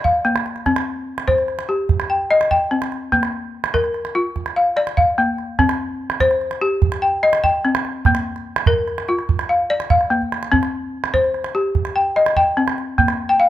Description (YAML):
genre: west african traditional, West African string and xylophone music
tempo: 97 BPM (dotted quarters)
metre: 12/8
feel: straight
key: C minor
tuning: A4 = 440 Hz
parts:
  - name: balafon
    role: arpeggios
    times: 0.0-13.5 s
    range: Bb3 to G5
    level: -17 LUFS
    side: left 2 dB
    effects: none
  - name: calabash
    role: percussion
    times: 0.0-13.2 s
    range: none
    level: -21 LUFS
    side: right 5 dB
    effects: none
room: light reverb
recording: close, detailed microphones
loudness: -16 LUFS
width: side -13 dB against mid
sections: 0.7-13.5 A section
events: drum fill 10.2-10.5; balafon fill 13.3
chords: 0.0 Bb; 0.7 Cm; 3.1 Bb; 5.6 Cm; 8.1 Bb; 10.5 Cm; 13.0 Bb5